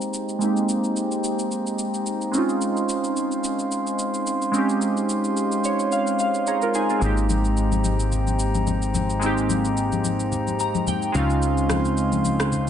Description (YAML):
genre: amapiano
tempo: 109 BPM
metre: 4/4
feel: swing 55% on 16ths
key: Ab major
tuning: A4 = 441 Hz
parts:
  - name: glassy digital keys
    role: accompaniment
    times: 0.0-12.7 s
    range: Ab3 to Bb5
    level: -23 LUFS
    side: right 2 dB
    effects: chorus, low-pass filter
  - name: glass harmonica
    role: sustained chords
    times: 0.0-12.7 s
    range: Ab3 to C6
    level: -28 LUFS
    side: left 2 dB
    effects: low-pass filter
  - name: electronic shaker and rim click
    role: drums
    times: 0.0-12.7 s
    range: none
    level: -32 LUFS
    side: equal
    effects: overdrive
  - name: plucky analog bass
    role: bass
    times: 7.0-12.7 s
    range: Ab1 to Db2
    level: -24 LUFS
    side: equal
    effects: none
  - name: congas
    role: percussion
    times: 7.3-12.7 s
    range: none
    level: -29 LUFS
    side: left 7 dB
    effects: none
room: studio reverb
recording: nothing above 11.0 kHz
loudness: -20 LUFS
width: side -9 dB against mid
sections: 0.0-12.7 A section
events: filter sweep 0.0-12.7; synth keys fill 5.4-7.0, 10.3-11.4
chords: 0.0 Abmaj9; 2.3 Dbmaj7; 7.0 Abmaj9; 11.1 Dbmaj7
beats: | 0.41 0.96 1.51 2.06 | 2.61 3.17 3.71 4.27 | 4.82 5.37 5.92 6.47 | 7.02 7.57 8.12 8.67 | 9.22 9.77 10.32 10.87 | 11.42 11.97 12.52